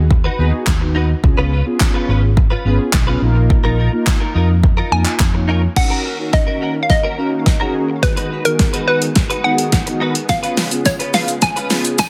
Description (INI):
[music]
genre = dance-pop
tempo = 106 BPM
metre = 4/4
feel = straight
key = Eb minor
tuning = A4 = 440 Hz
[part]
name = mellow synth brass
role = accompaniment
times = 0.0-12.0 s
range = Eb3 to Db5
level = -24 LUFS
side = equal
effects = chorus, sidechain pumping
[part]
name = vintage muted fingered electric bass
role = bass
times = 0.0-5.7 s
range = Ab1 to F2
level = -18 LUFS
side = equal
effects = sidechain pumping
[part]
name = direct-recorded clean electric guitar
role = riff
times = 0.1-12.0 s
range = Db4 to Cb5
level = -26 LUFS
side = equal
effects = ensemble chorus
[part]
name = deep house drum kit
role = drums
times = 0.1-12.1 s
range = crash cymbal, handclaps, hi-hat, kick drum, shaker, snare drum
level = -18 LUFS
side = equal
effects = soft clipping on snare
[part]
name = hollow square pluck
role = melody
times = 4.9-12.1 s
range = Bb4 to Ab5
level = -22 LUFS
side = equal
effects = chorus, tape echo
[part]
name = soft string machine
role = sustained chords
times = 5.8-12.1 s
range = Db3 to Bb4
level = -30 LUFS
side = equal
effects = ensemble chorus, sidechain pumping
[part]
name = tambourine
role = percussion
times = 10.3-12.1 s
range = none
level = -33 LUFS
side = equal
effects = none
[sound]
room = light reverb, digital ambience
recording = dense, heavily limited modern master, high-pass filter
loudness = -16 LUFS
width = mono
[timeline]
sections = 0.0-5.8 A section; 5.8-12.1 B section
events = build-up 5.8-12.1; drum fill 5.8-12.1; filter sweep 5.8-12.1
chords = 0.0 Abm7/Eb; 1.2 Db7; 3.2 Bbsus4; 5.8 Ebm7; 8.0 Abm7/Eb; 10.3 Db7